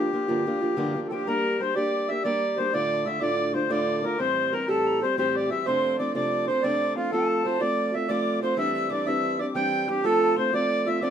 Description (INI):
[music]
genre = celtic folk, Celtic slip jig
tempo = 123 BPM (dotted quarters)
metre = 9/8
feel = straight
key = G dorian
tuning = A4 = 440 Hz
[part]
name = accordion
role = melody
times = 0.0-11.1 s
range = F4 to G5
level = -25 LUFS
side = right 2 dB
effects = none
[part]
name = fingerpicked steel-string acoustic guitar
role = accompaniment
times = 0.0-11.1 s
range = D2 to G4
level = -27 LUFS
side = equal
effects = none
[part]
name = breathy mid whistle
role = second line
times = 1.1-11.1 s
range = F5 to G6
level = -33 LUFS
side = left 9 dB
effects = none
[sound]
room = moderate studio reverb, RT60 0.8 s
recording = minimal, uncompressed stereo recording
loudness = -22 LUFS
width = side -8 dB against mid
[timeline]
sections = 0.0-1.3 A section; 1.3-11.1 B section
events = none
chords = 0.0 Gm7; 1.3 Gm; 2.7 Dm; 4.2 Am7; 5.7 F6; 7.1 F; 8.6 Cadd9/E; 10.0 F